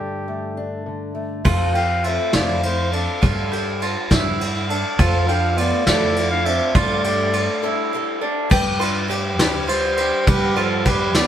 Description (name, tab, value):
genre	indie folk with a building arrangement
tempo	68 BPM (dotted quarters)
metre	6/8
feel	straight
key	unclear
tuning	A4 = 441 Hz
part	dark trumpet	melody	0.0-11.3 s	G4 to F5	-24 LUFS	left 1 dB	none
part	fingerpicked acoustic archtop guitar	accompaniment	0.0-1.5 s	G2 to D4	-29 LUFS	left 3 dB	none
part	upright bass	bass	0.0-11.3 s	D2 to G2	-24 LUFS	equal	none
part	picked twelve-string acoustic guitar	accompaniment	1.4-11.3 s	F3 to B4	-26 LUFS	left 4 dB	none
part	mandolin	arpeggios	1.4-11.3 s	D4 to G4	-25 LUFS	right 3 dB	none
part	soft brush drum kit	drums	1.4-11.3 s	crash cymbal, kick drum, ride cymbal, snare drum	-21 LUFS	equal	none
part	warm French horn	second line	5.0-11.3 s	F3 to D4	-26 LUFS	right 5 dB	none
room	moderate stone room reverb, RT60 1.1 s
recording	band playing live in one room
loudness	-17 LUFS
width	side -10 dB against mid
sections	0.0-1.5 A section; 1.5-8.5 B section; 8.5-11.3 C section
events	break 7.6-8.5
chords	0.0 Gsus2; 1.5 F; 3.2 Gsus2; 5.0 Dm/F; 6.8 Gsus2; 8.5 G